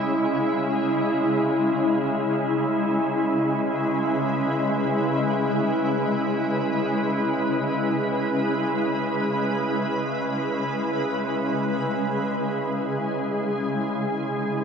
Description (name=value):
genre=ambient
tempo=free time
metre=none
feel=none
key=C# minor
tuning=A4 = 436 Hz
part: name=shimmering ambient pad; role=solo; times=0.0-14.6 s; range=C#3 to B4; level=-22 LUFS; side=equal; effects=chorus, built-in reverb, diffuse ambient delay
room=wet cathedral reverb, RT60 7.1 s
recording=in a vast, echoing space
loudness=-22 LUFS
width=side -6 dB against mid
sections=0.0-14.6 A section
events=none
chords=0.0 C#m7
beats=free time